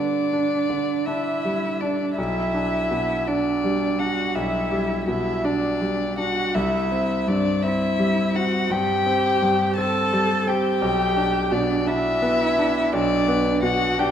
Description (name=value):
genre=classical, slow romantic movement for piano trio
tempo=54-58 BPM (dotted quarters)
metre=12/8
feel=rubato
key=G major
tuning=A4 = 437 Hz
part: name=dark violin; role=melody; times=0.0-14.1 s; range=D5 to A5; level=-24 LUFS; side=left 5 dB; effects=none
part: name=dark cello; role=second line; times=0.0-14.1 s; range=D4 to A4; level=-25 LUFS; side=right 6 dB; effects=none
part: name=bright concert grand piano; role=accompaniment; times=0.0-14.1 s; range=B1 to D4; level=-24 LUFS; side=equal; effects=none
room=moderate scoring stage reverb, RT60 2.0 s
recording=none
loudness=-20 LUFS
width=side -9 dB against mid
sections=0.0-14.1 A section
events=none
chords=0.0 G5; 2.2 G/B; 6.6 C; 10.8 G/B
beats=1.07 | 2.18 3.28 4.36 5.45 | 6.56 7.64 8.71 9.79 | 10.83 11.88 12.94 13.99